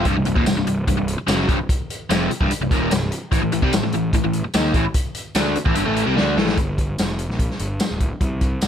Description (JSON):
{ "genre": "classic rock", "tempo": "147 BPM", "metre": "4/4", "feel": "straight", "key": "unclear", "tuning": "A4 = 439 Hz", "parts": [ { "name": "biting overdriven guitar", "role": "riff", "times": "0.0-6.6 s", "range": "C2 to Eb4", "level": "-20 LUFS", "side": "left 1 dB", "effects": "none" }, { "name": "fuzz picked electric bass", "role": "bass", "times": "0.0-8.7 s", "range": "C1 to Eb2", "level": "-25 LUFS", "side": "equal", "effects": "overdrive" }, { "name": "vintage drum kit", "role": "drums", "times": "0.0-8.7 s", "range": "hi-hat, kick drum, snare drum, tambourine", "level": "-21 LUFS", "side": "equal", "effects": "none" } ], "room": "light reverb", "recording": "none", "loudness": "-18 LUFS", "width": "side -9 dB against mid", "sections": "0.1-6.6 A section; 6.6-8.7 B section", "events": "drum fill 6.2-6.6", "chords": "0.1 Cm; 3.3 A5; 6.6 Gm" }